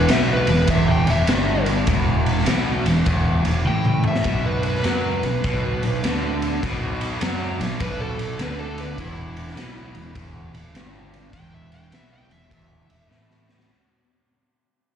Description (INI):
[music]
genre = blues rock power trio and southern rock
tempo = 102 BPM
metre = 4/4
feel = swing 65% on 8ths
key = unclear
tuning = A4 = 438 Hz
[part]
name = overdriven slide guitar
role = melody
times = 0.0-13.7 s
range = E4 to G5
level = -27 LUFS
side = left 1 dB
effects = slapback echo
[part]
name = cranked stack guitar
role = riff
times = 0.0-13.7 s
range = E2 to F#3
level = -25 LUFS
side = right 1 dB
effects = overdrive, slapback echo
[part]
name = fuzz fingered electric bass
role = bass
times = 0.0-13.6 s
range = E1 to F#2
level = -24 LUFS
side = equal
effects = overdrive
[part]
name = raw garage drum kit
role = drums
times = 0.1-13.7 s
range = kick drum, ride cymbal, snare drum, toms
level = -23 LUFS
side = left 1 dB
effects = none
[sound]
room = light reverb, small room ambience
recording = live gig heard through the venue's PA, club reverb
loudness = -19 LUFS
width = side -8 dB against mid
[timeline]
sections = 0.0-13.7 A section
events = fade-out 0.0-13.7; drum fill 3.7-4.3, 13.1-13.7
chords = 0.0 E5; 4.3 B5; 9.0 E5